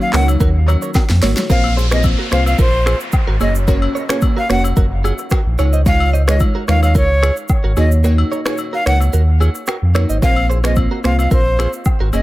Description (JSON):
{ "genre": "afrobeats", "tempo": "110 BPM", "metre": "4/4", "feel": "straight", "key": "Bb minor", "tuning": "A4 = 442 Hz", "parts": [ { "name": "breathy bright jazz flute", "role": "melody", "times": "0.0-12.2 s", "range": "C5 to Gb5", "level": "-21 LUFS", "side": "equal", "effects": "analog delay" }, { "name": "airy breathy pad", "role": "sustained chords", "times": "0.0-1.5 s", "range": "Eb3 to Gb4", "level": "-26 LUFS", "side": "equal", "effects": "chorus" }, { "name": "glassy digital keys", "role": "accompaniment", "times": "0.1-12.2 s", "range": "Ab3 to Db5", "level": "-22 LUFS", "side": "left 1 dB", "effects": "chorus, analog delay" }, { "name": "direct-recorded clean electric guitar", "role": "riff", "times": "0.1-12.2 s", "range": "Db4 to Eb5", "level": "-26 LUFS", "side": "right 4 dB", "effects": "analog chorus, analog delay" }, { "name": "sub bass with octave", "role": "bass", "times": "0.1-12.2 s", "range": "F1 to F2", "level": "-14 LUFS", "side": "equal", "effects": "none" }, { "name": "afro-pop drum kit", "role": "drums", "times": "0.1-12.2 s", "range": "finger snaps, handclaps, hi-hat, kick drum, rim click, shaker, snare drum", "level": "-18 LUFS", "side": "equal", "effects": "none" }, { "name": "agogo bells and woodblock", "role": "percussion", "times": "0.3-12.2 s", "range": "none", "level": "-29 LUFS", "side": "left 4 dB", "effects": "analog delay" }, { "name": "downlifter", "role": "sound effects", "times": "1.5-5.9 s", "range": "none", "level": "-28 LUFS", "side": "equal", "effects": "none" } ], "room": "little or no reverb", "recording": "echo-heavy mix", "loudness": "-12 LUFS", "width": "side -17 dB against mid", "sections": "0.0-1.5 A section; 1.5-12.2 B section", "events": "drum fill 0.9-1.5; kick muted 8.0-10.2", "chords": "0.0 Dbadd9; 1.5 Bbsus2; 3.4 Gb; 5.6 Dbadd9; 10.2 Bbsus2" }